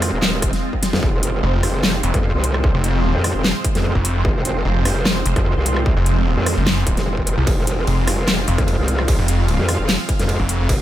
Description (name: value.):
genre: heavy wobble dubstep.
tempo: 149 BPM.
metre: 4/4.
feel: half-time.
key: F minor.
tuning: A4 = 440 Hz.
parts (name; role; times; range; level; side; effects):
lush unison pad; sustained chords; 0.0-10.8 s; Ab3 to F5; -25 LUFS; right 1 dB; chorus, phaser, sidechain pumping.
growl bass; bass; 0.0-10.8 s; Eb1 to F2; -20 LUFS; equal; chorus, overdrive.
dubstep drum kit; drums; 0.0-10.8 s; handclaps, hi-hat, ride cymbal, rim click, snare drum; -22 LUFS; equal; small room ambience.
electronic kick drum; drums; 0.4-10.8 s; none; -20 LUFS; equal; distortion, small room ambience.
snarling distorted saw bass; bass; 1.4-10.7 s; F1 to C2; -18 LUFS; equal; distortion, overdrive.
room: little or no reverb.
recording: none.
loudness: -16 LUFS.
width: side -13 dB against mid.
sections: 0.0-10.8 A section.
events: drum fill 0.8.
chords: 0.0 Fm.